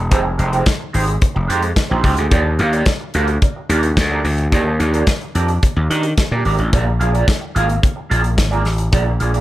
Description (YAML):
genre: disco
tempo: 109 BPM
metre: 4/4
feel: straight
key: unclear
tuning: A4 = 438 Hz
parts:
  - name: gritty slap bass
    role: bass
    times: 0.0-9.4 s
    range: E1 to Eb3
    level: -16 LUFS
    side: equal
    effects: overdrive
  - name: electric guitar at the edge of break-up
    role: accompaniment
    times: 0.1-9.4 s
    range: Ab3 to F5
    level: -21 LUFS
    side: right 4 dB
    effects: wah, lush chorus
  - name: modern studio drum kit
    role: drums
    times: 0.1-9.4 s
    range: hi-hat, kick drum, snare drum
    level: -18 LUFS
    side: equal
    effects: none
room: small room reverb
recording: none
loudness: -14 LUFS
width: side -15 dB against mid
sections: 0.0-9.4 A section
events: none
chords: 0.0 Fm9; 2.3 Ebmaj7; 6.7 Bb7